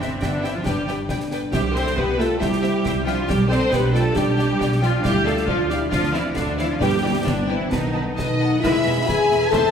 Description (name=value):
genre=cinematic, heroic adventure film score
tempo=136 BPM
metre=4/4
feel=straight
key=C major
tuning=A4 = 440 Hz
part: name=clear symphonic violin section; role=melody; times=0.0-9.7 s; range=D#5 to A5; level=-30 LUFS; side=left 2 dB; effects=none
part: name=rich symphonic violin section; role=second line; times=0.0-9.7 s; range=B4 to B5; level=-30 LUFS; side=left 1 dB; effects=none
part: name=rich symphonic viola section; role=accompaniment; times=0.0-9.7 s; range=G#3 to C5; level=-25 LUFS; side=right 2 dB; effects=none
part: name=mellow French horn section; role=sustained chords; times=0.0-9.7 s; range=A3 to A4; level=-24 LUFS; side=left 3 dB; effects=none
part: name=concert harp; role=arpeggios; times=0.0-9.7 s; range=E2 to D5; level=-31 LUFS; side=left 4 dB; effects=none
part: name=rich symphonic cello section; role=bass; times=0.0-9.6 s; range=E2 to C4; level=-27 LUFS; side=right 2 dB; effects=none
part: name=warm symphonic double bass section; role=bass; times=0.0-9.6 s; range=E1 to D2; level=-26 LUFS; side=right 2 dB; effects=none
part: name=concert snare drum, concert bass drum and clash cymbals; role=drums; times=0.0-9.7 s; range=none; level=-28 LUFS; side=equal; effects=none
part: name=timpani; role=percussion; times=1.5-2.1, 6.8-7.5 s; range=G2 to C3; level=-30 LUFS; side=equal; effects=none
part: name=bright trombone section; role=sustained chords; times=8.6-9.7 s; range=E3 to C4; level=-30 LUFS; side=right 2 dB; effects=none
room=wet recital hall reverb, RT60 1.6 s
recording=recorded in a church or concert hall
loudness=-18 LUFS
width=side -7 dB against mid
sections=0.0-8.6 A section; 8.6-9.7 B section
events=none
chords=0.0 C/G; 0.7 G; 1.5 C; 3.3 G/B; 5.0 Dm; 6.8 G; 7.7 B7; 8.6 E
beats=0.23 0.66 1.09 | 1.53 1.97 2.41 2.85 | 3.29 3.73 4.17 4.61 | 5.05 5.49 5.92 6.37 | 6.81 7.26 7.72 8.18 | 8.64 9.09 9.53